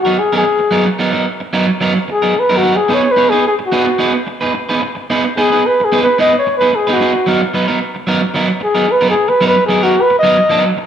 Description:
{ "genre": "disco", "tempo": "110 BPM", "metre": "4/4", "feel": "straight", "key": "G# minor", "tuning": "A4 = 441 Hz", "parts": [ { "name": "breathy flugelhorn", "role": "melody", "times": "0.0-10.7 s", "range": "F#4 to D#5", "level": "-13 LUFS", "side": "left 1 dB", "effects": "none" }, { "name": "electric guitar at the edge of break-up", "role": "accompaniment", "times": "0.1-10.8 s", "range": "F#3 to C#5", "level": "-15 LUFS", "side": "right 3 dB", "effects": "spring reverb" } ], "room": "moderate echo chamber reverb, RT60 1.9 s, small room ambience", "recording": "studio reverb", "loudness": "-11 LUFS", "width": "side -9 dB against mid", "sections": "0.0-10.9 A section", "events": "flugelhorn solo 0.0-10.9", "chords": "0.0 G#m9; 2.9 B6; 7.3 G#m9/F# (rootless)" }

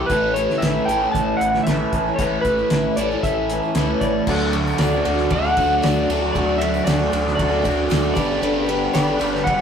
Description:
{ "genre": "folk rock and heartland rock", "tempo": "116 BPM", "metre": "4/4", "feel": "straight", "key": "D major", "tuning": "A4 = 437 Hz", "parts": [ { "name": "electric slide guitar", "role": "melody", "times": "0.0-9.6 s", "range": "B4 to A5", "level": "-22 LUFS", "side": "left 1 dB", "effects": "slapback echo" }, { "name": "picked steel-string acoustic guitar", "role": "accompaniment", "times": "0.0-9.6 s", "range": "A2 to B4", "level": "-26 LUFS", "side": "left 2 dB", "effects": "none" }, { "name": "crunchy overdriven guitar", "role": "riff", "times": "0.0-9.6 s", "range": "G2 to A4", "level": "-22 LUFS", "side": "right 2 dB", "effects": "phaser" }, { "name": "sub bass with octave", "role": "bass", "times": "0.0-9.6 s", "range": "G1 to D2", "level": "-29 LUFS", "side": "equal", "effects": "none" }, { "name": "cloth-damped thuddy drum kit", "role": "drums", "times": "0.1-9.6 s", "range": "crash cymbal, hi-hat, kick drum, ride cymbal, snare drum", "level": "-24 LUFS", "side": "right 1 dB", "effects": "none" }, { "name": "tonewheel organ", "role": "sustained chords", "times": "4.3-9.6 s", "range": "G4 to D6", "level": "-30 LUFS", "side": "equal", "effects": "slow rotary speaker" }, { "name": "tambourine", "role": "percussion", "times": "4.5-9.6 s", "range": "none", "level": "-45 LUFS", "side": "right 5 dB", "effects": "none" } ], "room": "moderate studio reverb, RT60 0.6 s", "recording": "rough rehearsal-room recording, warm saturation", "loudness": "-17 LUFS", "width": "side -7 dB against mid", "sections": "0.0-4.3 A section; 4.3-9.6 B section", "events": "none", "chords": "0.1 Aadd9; 4.3 D; 8.2 Gadd9" }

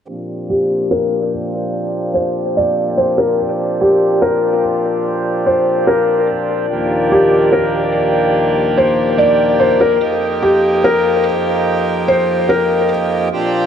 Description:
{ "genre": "hip hop", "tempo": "145 BPM", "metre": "4/4", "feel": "half-time", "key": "Bb major", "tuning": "A4 = 442 Hz", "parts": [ { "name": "pedal harmonium", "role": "sustained chords", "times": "0.1-13.7 s", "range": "Eb2 to G4", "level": "-16 LUFS", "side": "equal", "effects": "low-pass filter" }, { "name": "felt-muted upright piano", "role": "melody", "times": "0.5-12.9 s", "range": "G4 to D5", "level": "-15 LUFS", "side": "left 1 dB", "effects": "low-pass filter, tape echo" } ], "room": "moderate lush hall reverb, RT60 2.3 s", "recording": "none", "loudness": "-12 LUFS", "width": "side -8 dB against mid", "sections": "0.1-13.3 A section", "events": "filter sweep 0.1-13.3", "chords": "0.1 Bb6; 6.7 Ebmaj9; 10.0 F9sus4" }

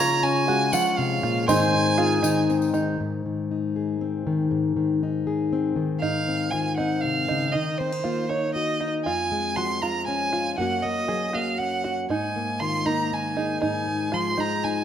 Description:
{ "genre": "acoustic folk duo or small band", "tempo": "119 BPM", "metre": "3/4", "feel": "straight", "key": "Ab mixolydian", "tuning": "A4 = 441 Hz", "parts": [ { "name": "clear fiddle", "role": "melody", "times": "0.0-2.4, 6.0-14.8 s", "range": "C5 to C6", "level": "-26 LUFS", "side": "right 2 dB", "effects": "none" }, { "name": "bowl-back mandolin", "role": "second line", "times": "0.0-2.7 s", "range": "Ab4 to Db5", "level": "-29 LUFS", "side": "right 2 dB", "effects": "none" }, { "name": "fingerpicked plugged-in steel-string acoustic guitar", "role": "accompaniment", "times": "0.0-14.8 s", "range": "F2 to Ab4", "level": "-25 LUFS", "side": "left 4 dB", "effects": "none" }, { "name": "hand-pumped harmonium", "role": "sustained chords", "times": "0.0-3.0 s", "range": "Ab2 to Db5", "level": "-35 LUFS", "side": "equal", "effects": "none" }, { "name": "open-back banjo", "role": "arpeggios", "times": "0.0-3.0, 6.0-14.8 s", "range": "Eb4 to Ab4", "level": "-29 LUFS", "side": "right 5 dB", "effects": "slapback echo" }, { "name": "tambourine", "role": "percussion", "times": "0.7-2.8 s", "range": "none", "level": "-35 LUFS", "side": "left 7 dB", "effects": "none" } ], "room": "moderate recital hall reverb, RT60 1.5 s", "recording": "none", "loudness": "-22 LUFS", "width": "side -9 dB against mid", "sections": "0.0-3.0 A section; 3.0-6.0 B section; 6.0-14.8 C section", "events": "none", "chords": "0.0 Db; 1.5 Ab; 6.0 Ab6; 7.5 Ebm; 9.1 Db/F; 10.6 Gb; 12.1 Absus2; 13.6 Fm7/Ab" }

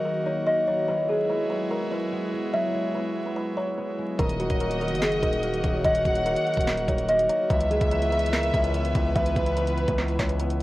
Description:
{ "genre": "hip hop, trap", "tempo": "145 BPM", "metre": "4/4", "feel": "half-time", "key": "Eb phrygian", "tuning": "A4 = 445 Hz", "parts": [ { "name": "kalimba", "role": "melody", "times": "0.0-10.6 s", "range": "Gb4 to E5", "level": "-26 LUFS", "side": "equal", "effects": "cassette tape" }, { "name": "concert harp", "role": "accompaniment", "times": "0.0-10.6 s", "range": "Eb3 to E4", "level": "-34 LUFS", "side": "left 5 dB", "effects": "cassette tape" }, { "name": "airy breathy pad", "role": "sustained chords", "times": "0.0-10.6 s", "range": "Db3 to Gb4", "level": "-31 LUFS", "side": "right 1 dB", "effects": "chorus, cassette tape" }, { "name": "dark studio violin section", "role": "second line", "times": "4.2-10.4 s", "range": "Cb5 to Gb5", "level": "-30 LUFS", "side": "equal", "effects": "cassette tape, analog delay" }, { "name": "distorted 808-style bass", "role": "bass", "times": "4.2-10.6 s", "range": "Eb1 to Db2", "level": "-28 LUFS", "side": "equal", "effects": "distortion" }, { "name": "trap drum kit", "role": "drums", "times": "4.2-10.6 s", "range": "handclaps, hi-hat, kick drum, snare drum", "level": "-28 LUFS", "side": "equal", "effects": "overdrive, cassette tape" } ], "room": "light reverb", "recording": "home recording on cassette, vinyl crackle", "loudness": "-22 LUFS", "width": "side -17 dB against mid", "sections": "0.0-10.6 A section", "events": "none", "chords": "0.0 Ebm; 0.9 Eadd9; 4.2 Ebm; 7.5 Dbm7" }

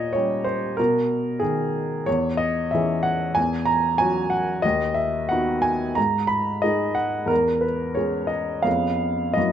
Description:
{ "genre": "classical, romantic character piece for solo piano", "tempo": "80-96 BPM", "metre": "4/4", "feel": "rubato", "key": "unclear", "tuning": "A4 = 439 Hz", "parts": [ { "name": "clear grand piano", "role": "solo", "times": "0.0-9.5 s", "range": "D#2 to B5", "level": "-20 LUFS", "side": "equal", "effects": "none" } ], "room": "light reverb", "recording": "dark, warm production, nothing above 7.8 kHz", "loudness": "-20 LUFS", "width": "side -9 dB against mid", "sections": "0.0-9.5 A section", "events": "none", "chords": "0.0 Gdim/Bb; 0.8 G#m/B; 2.1 C#m/E; 3.4 F#5/E; 4.6 B/D#; 6.0 G#5; 7.3 C#m/E; 8.7 C#7/E#" }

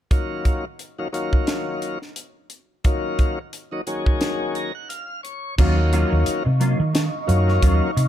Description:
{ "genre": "electric jazz fusion", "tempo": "88 BPM", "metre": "4/4", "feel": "swing 56% on 16ths", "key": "Eb minor", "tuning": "A4 = 439 Hz", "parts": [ { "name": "tonewheel organ", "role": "accompaniment", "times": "0.1-7.9 s", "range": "Eb3 to Bb5", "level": "-26 LUFS", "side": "left 3 dB", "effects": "slow rotary speaker" }, { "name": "crisp fusion drum kit", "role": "drums", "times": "0.1-8.1 s", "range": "crash cymbal, hi-hat, kick drum, snare drum", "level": "-21 LUFS", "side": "equal", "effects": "none" }, { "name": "ethereal airy pad", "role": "sustained chords", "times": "6.1-8.1 s", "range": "Eb4 to Db6", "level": "-29 LUFS", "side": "right 2 dB", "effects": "ensemble chorus, built-in reverb, phaser" }, { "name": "mellow electric guitar", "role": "stabs", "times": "5.6-8.0 s", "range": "Gb3 to F4", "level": "-27 LUFS", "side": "right 1 dB", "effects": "ensemble chorus" }, { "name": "hollow-body short-scale fingered electric bass", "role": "bass", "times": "5.6-8.1 s", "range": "Eb2 to Eb3", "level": "-18 LUFS", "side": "equal", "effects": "none" } ], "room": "little or no reverb", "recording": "none", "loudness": "-19 LUFS", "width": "side -11 dB against mid", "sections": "0.1-5.6 A section; 5.6-8.1 B section", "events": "tonewheel organ fill 4.2-5.6", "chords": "0.1 Ebm9" }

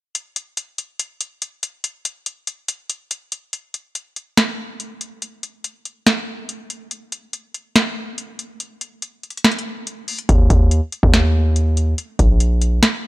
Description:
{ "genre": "hip hop, trap", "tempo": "142 BPM", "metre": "4/4", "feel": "half-time", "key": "unclear", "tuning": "A4 = 443 Hz", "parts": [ { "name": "booming analog drum machine", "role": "drums", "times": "0.1-12.9 s", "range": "hi-hat, kick drum, snare drum", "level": "-17 LUFS", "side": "equal", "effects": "none" }, { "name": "hard-hitting 808-style bass", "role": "bass", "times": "10.3-12.8 s", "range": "Bb1 to Eb2", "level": "-15 LUFS", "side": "equal", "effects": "none" } ], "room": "digital ambience", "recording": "none", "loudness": "-17 LUFS", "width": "side -18 dB against mid", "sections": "0.1-3.5 A section; 3.5-13.1 B section", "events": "kick muted 3.5-10.3", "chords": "none" }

